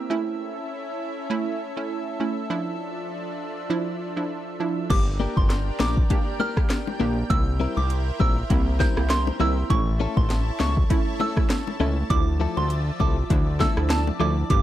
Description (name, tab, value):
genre	dancehall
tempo	100 BPM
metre	4/4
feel	swing 56% on 16ths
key	D minor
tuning	A4 = 441 Hz
part	analog pluck	accompaniment	0.0-14.6 s	F3 to G4	-29 LUFS	right 5 dB	chorus, sidechain pumping
part	lush unison pad	sustained chords	0.0-14.6 s	F3 to Bb5	-33 LUFS	equal	chorus, sidechain pumping
part	soft synth bell	melody	4.9-14.6 s	A5 to G6	-30 LUFS	right 3 dB	chorus, ping-pong delay
part	fat analog bass	bass	4.9-14.6 s	G1 to D2	-24 LUFS	equal	none
part	afro-pop drum kit	drums	4.9-14.6 s	crash cymbal, hi-hat, kick drum, rim click, snare drum	-23 LUFS	equal	none
part	bongos	percussion	4.9-14.6 s	none	-34 LUFS	left 7 dB	none
part	direct-recorded clean electric guitar	arpeggios	5.2-14.4 s	F3 to Bb4	-27 LUFS	left 7 dB	none
room	little or no reverb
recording	dark, warm production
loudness	-21 LUFS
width	side -13 dB against mid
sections	0.0-4.9 A section; 4.9-14.6 B section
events	none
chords	0.1 A; 2.5 Dmadd9; 4.9 Gm; 7.3 C7; 9.7 A; 12.1 Dmadd9